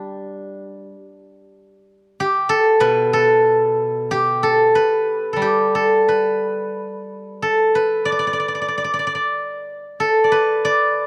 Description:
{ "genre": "chinese traditional, Chinese solo plucked strings", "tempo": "93 BPM", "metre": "4/4", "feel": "rubato", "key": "G gong mode", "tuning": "A4 = 439 Hz", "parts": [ { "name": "steel-string zither", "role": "solo", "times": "0.0-11.1 s", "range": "B2 to D5", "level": "-19 LUFS", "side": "equal", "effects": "none" } ], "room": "small room reverb", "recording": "dry, close 1970s-style studio recording", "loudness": "-18 LUFS", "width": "mono", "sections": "0.0-11.1 A section", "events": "none", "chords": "none" }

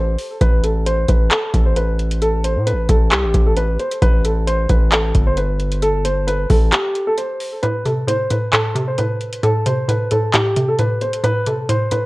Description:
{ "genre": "hip hop, trap", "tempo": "133 BPM", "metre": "4/4", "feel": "half-time", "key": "A minor", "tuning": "A4 = 440 Hz", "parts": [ { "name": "dark concert grand piano", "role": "melody", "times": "0.0-12.1 s", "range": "G4 to C5", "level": "-20 LUFS", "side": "equal", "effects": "low-pass filter, digital delay" }, { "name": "distorted 808-style bass", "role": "bass", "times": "0.0-6.7 s", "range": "G1 to A2", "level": "-18 LUFS", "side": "equal", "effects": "distortion" }, { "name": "booming analog drum machine", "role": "drums", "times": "0.2-12.0 s", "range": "handclaps, hi-hat, kick drum", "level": "-17 LUFS", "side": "equal", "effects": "none" }, { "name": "hollow square pluck", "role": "accompaniment", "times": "7.6-12.1 s", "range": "A2 to C3", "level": "-19 LUFS", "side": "equal", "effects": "chorus, low-pass filter" } ], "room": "light reverb, digital ambience", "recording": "worn, warbling old tape, cassette tape, warbly pitch drift", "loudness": "-15 LUFS", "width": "side -21 dB against mid", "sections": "0.0-12.1 A section", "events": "break 6.7-7.6; kick muted 7.6-12.1", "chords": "0.0 Am" }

